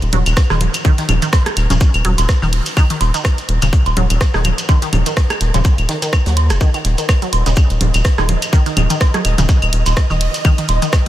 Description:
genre	minimal techno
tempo	125 BPM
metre	4/4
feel	swing 56% on 16ths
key	Eb minor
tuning	A4 = 439 Hz
part	rubbery square bass	bass	0.0-10.8 s	Eb1 to Eb2	-15 LUFS	equal	sidechain pumping
part	garage drum kit	drums	0.0-11.1 s	hi-hat, rim click	-23 LUFS	right 1 dB	overdrive, studio ambience
part	shekere	percussion	0.0-11.1 s	none	-29 LUFS	right 1 dB	none
part	resonant blip pluck	riff	0.1-11.1 s	Db3 to Gb3	-22 LUFS	equal	phaser, sidechain pumping, diffuse ambient delay
part	loose indie drum kit	drums	0.1-11.1 s	hi-hat, shaker, snare drum	-32 LUFS	equal	none
part	electronic congas, claves, rim click and cowbell	percussion	0.1-11.0 s	none	-22 LUFS	right 2 dB	studio ambience, diffuse ambient delay
part	electronic kick drum	drums	0.4-11.0 s	none	-12 LUFS	equal	overdrive, studio ambience
part	flickering grainy texture	texture	7.4-11.1 s	Eb5	-27 LUFS	right 5 dB	built-in reverb, sidechain pumping
room	studio ambience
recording	none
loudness	-12 LUFS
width	side -13 dB against mid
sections	0.0-11.1 A section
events	none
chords	none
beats	0.37 | 0.85 1.33 1.81 2.29 | 2.77 3.25 3.73 4.21 | 4.69 5.17 5.65 6.13 | 6.61 7.09 7.57 8.05 | 8.53 9.01 9.49 9.97 | 10.45 10.93

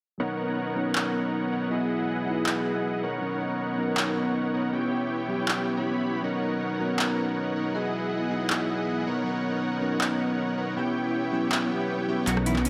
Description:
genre	future bass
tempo	159 BPM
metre	4/4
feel	half-time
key	B major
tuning	A4 = 440 Hz
part	bell-like tine electric piano	accompaniment	0.2-12.7 s	F#3 to D#5	-32 LUFS	equal	analog chorus, low-pass filter, dub echo
part	dense compressed supersaw	riff	0.2-12.7 s	B3 to B5	-30 LUFS	equal	low-pass filter, dub echo
part	big-room dance drum kit	drums	1.0-12.7 s	handclaps, hi-hat, rim click	-31 LUFS	equal	overdrive
part	swell and riser	sound effects	11.7-12.7 s	none	-40 LUFS	equal	none
part	clean electric guitar	melody	12.3-12.7 s	C#3 to F#4	-30 LUFS	equal	spring reverb
part	detuned saw bass	bass	12.3-12.7 s	B1	-31 LUFS	equal	chorus
room	moderate lush hall reverb, RT60 1.8 s, digital ambience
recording	none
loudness	-27 LUFS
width	mono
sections	0.2-12.3 A section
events	filter sweep on tine electric piano 0.2-12.3; swell 11.7-12.3; drum fill 12.3-12.7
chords	0.2 Bmaj9; 1.7 Emaj9; 3.0 Bmaj9; 4.7 Em6; 6.2 Bmaj9; 7.7 Emaj9; 9.1 Bmaj9; 10.8 Em6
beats	| 0.20 0.58 0.95 1.33 | 1.71 2.08 2.46 2.84 | 3.22 3.59 3.97 4.35 | 4.73 5.10 5.48 5.86 | 6.24 6.61 6.99 7.37 | 7.75 8.12 8.50 8.88 | 9.26 9.63 10.01 10.39 | 10.76 11.14 11.52 11.90 | 12.27 12.65

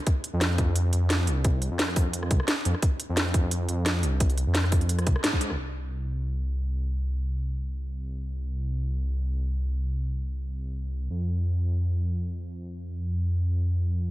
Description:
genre	liquid drum and bass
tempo	174 BPM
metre	4/4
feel	swing 54% on 16ths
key	unclear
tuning	A4 = 441 Hz
part	electronic kick drum	drums	0.1-5.4 s	none	-25 LUFS	equal	none
part	garage drum kit	drums	0.1-5.6 s	hi-hat, rim click, snare drum	-28 LUFS	equal	low-pass filter on hats, low-pass filter on snare, low-pass filter on room
part	dark detuned saw bass	bass	0.3-14.1 s	C2 to Ab2	-26 LUFS	equal	none
room	little or no reverb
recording	none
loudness	-25 LUFS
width	side -16 dB against mid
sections	0.0-5.6 A section; 5.6-14.1 B section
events	drop 0.0-5.6; band accent 5.2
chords	none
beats	| 0.07 0.41 0.76 1.10 | 1.45 1.79 2.13 2.48 | 2.83 3.17 3.51 3.86 | 4.20 4.55 4.89 5.24 | 5.58 5.93 6.27 6.62 | 6.96 7.31 7.65 8.00 | 8.34 8.69 9.03 9.38 | 9.72 10.07 10.41 10.76 | 11.10 11.45 11.79 12.13 | 12.48 12.82 13.17 13.51 | 13.86

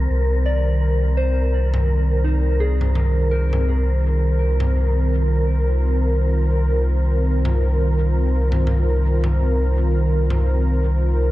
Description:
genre	ambient dub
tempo	84 BPM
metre	4/4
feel	swing 60% on 16ths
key	unclear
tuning	A4 = 439 Hz
part	warm analog pad	sustained chords	0.0-11.3 s	Eb3 to C5	-24 LUFS	equal	chorus
part	warm sub bass	bass	0.0-11.3 s	C2	-18 LUFS	equal	tube saturation
part	wind-like tuned noise texture	texture	0.0-11.3 s	Bb4	-32 LUFS	right 2 dB	built-in reverb
part	soft synth bell	arpeggios	0.5-11.3 s	Eb4 to D5	-30 LUFS	left 1 dB	chorus, phaser, dub echo
part	toms	drums	1.7-10.4 s	none	-31 LUFS	equal	dub echo
room	small room ambience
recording	none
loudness	-17 LUFS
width	side -16 dB against mid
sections	0.0-11.3 A section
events	none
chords	0.1 Abadd9/C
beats	| 0.10 0.81 1.53 2.24 | 2.96 3.67 4.39 5.10 | 5.81 6.53 7.24 7.96 | 8.67 9.39 10.10 10.81

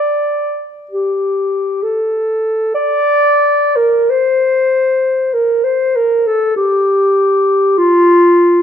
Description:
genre	classical, free, expressive piece for unaccompanied clarinet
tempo	26-51 BPM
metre	4/4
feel	rubato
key	D minor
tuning	A4 = 437 Hz
part	mellow clarinet	solo	0.0-8.6 s	F4 to D5	-11 LUFS	left 1 dB	none
room	moderate recital hall reverb, RT60 1.6 s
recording	close, detailed microphones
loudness	-11 LUFS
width	side -9 dB against mid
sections	0.0-2.7 A section; 2.7-8.6 A section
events	none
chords	none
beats	0.91 | 2.74 4.10 5.34 6.55 | 7.77

